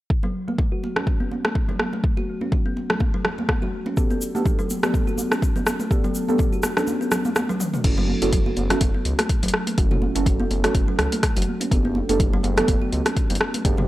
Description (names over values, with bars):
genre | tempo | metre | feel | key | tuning
afro house | 124 BPM | 4/4 | swing 56% on 16ths | F# phrygian | A4 = 441 Hz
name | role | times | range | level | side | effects
electronic kick drum | drums | 0.1-13.8 s | none | -22 LUFS | equal | none
kalimba | arpeggios | 0.2-13.9 s | F#3 to F#4 | -28 LUFS | equal | sidechain pumping, low-pass filter, analog delay
congas | percussion | 0.2-13.9 s | none | -30 LUFS | right 2 dB | none
deep house drum kit | drums | 1.0-13.9 s | crash cymbal, hi-hat, rim click, toms | -25 LUFS | equal | overdrive
deep mellow chord stab | stabs | 4.0-13.9 s | B3 to A4 | -26 LUFS | right 2 dB | chorus, sidechain pumping, analog delay
tube shaker | percussion | 4.0-7.8 s | none | -35 LUFS | left 1 dB | none
smooth synth bass | bass | 7.8-13.9 s | F#1 to C#2 | -26 LUFS | equal | sidechain pumping
room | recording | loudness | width
light reverb | dry, gritty hardware recording | -19 LUFS | side -16 dB against mid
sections
0.1-7.8 A section; 7.8-13.9 B section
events
kick drops out 6.9-7.8; drum fill 7.6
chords
0.1 F#m; 4.0 Gadd9/F#; 7.8 F#m7; 11.7 Gadd9/F#